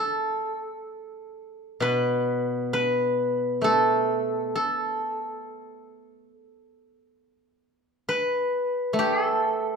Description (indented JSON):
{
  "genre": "chinese traditional, Chinese solo plucked strings",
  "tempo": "67 BPM",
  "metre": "4/4",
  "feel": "rubato",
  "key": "unclear",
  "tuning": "A4 = 440 Hz",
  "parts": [
    { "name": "steel-string zither", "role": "solo", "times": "0.0-9.8 s", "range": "B2 to B4", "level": "-24 LUFS", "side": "equal", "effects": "none" }
  ],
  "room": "moderate recital hall reverb, RT60 1.2 s",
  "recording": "minimal, uncompressed stereo recording",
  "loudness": "-23 LUFS",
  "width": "side -5 dB against mid",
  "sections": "0.0-9.8 A section",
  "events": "none",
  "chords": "none",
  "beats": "0.91 1.83 2.74 | 3.64 4.54 5.44 6.31 | 7.18 8.06 8.96"
}